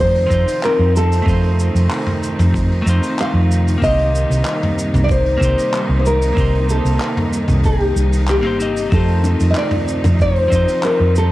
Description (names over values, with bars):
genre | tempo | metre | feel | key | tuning
sunset chillout | 94 BPM | 4/4 | straight | unclear | A4 = 441 Hz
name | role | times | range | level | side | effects
nylon-string guitar | melody | 0.0-11.3 s | G4 to F5 | -20 LUFS | left 1 dB | cassette tape, analog delay
clean electric guitar | accompaniment | 0.0-11.3 s | F3 to Eb5 | -24 LUFS | moving between left 3 dB and right 4 dB | auto-pan, cassette tape, analog delay
rich studio string section | sustained chords | 0.0-11.3 s | C3 to Eb4 | -24 LUFS | equal | cassette tape
hollow-body short-scale fingered electric bass | bass | 0.0-11.3 s | G1 to F2 | -16 LUFS | equal | none
soft brush drum kit | drums | 0.0-11.3 s | cabasa, handclaps, hi-hat, toms | -26 LUFS | equal | cassette tape
electronic kick drum | drums | 0.3-10.7 s | none | -20 LUFS | equal | cassette tape
bongos | percussion | 8.9-11.0 s | none | -28 LUFS | left 3 dB | none
room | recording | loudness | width
light reverb, small room ambience | home recording on cassette | -14 LUFS | side -16 dB against mid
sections
0.0-11.3 A section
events
none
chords
0.0 F7; 3.8 Cm7; 8.9 F7